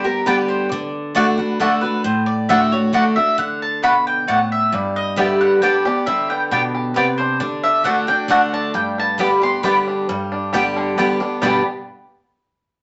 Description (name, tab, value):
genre	bluegrass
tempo	134 BPM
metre	3/4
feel	straight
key	G major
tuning	A4 = 440 Hz
part	mandolin	melody	0.0-11.6 s	A4 to C6	-23 LUFS	equal	none
part	picked steel-string acoustic guitar	accompaniment	0.0-11.6 s	G2 to G4	-22 LUFS	equal	none
part	mandolin	stabs	0.3-11.6 s	A3 to G5	-21 LUFS	equal	none
part	bluegrass banjo	melody	4.7-11.7 s	D3 to G4	-28 LUFS	equal	none
room	wet studio reverb, RT60 0.8 s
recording	nothing above 7.9 kHz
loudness	-18 LUFS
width	mono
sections	0.0-10.1 A section; 10.1-11.4 B section; 11.4-12.8 C section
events	none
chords	0.0 G; 0.7 D; 4.7 G; 7.4 D; 8.7 G